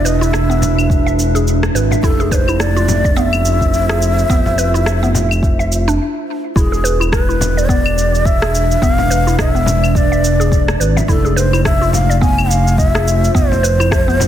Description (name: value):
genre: organic downtempo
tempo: 106 BPM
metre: 4/4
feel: swing 58% on 16ths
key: E phrygian dominant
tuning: A4 = 441 Hz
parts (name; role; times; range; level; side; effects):
- breathy low ney; melody; 0.0-14.3 s; G#4 to G#5; -19 LUFS; left 1 dB; tape echo
- warbly tape-like pad; sustained chords; 0.0-14.3 s; G#3 to E5; -22 LUFS; right 2 dB; chorus, built-in reverb, sidechain pumping
- mallet-like synth pluck; arpeggios; 0.0-14.2 s; B3 to E5; -22 LUFS; equal; chorus, tape echo
- smooth synth bass; bass; 0.0-14.3 s; E1 to G#1; -16 LUFS; equal; sidechain pumping
- electronic shaker, rim click and claves; drums; 0.1-14.3 s; none; -22 LUFS; left 1 dB; small room reverb, soft clipping on snare
- frame drum; percussion; 0.6-14.3 s; none; -22 LUFS; left 3 dB; none
- electronic kick drum; drums; 0.9-14.0 s; none; -16 LUFS; equal; small room reverb
room: light reverb, digital ambience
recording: dense, heavily limited modern master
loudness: -12 LUFS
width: side -11 dB against mid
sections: 0.0-6.6 A section; 6.6-14.3 A section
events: stop 6.0-6.6; filter sweep on synth pluck 6.6-14.3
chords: 0.0 E7; 2.0 Fmaj7; 6.6 E7; 11.1 Fmaj7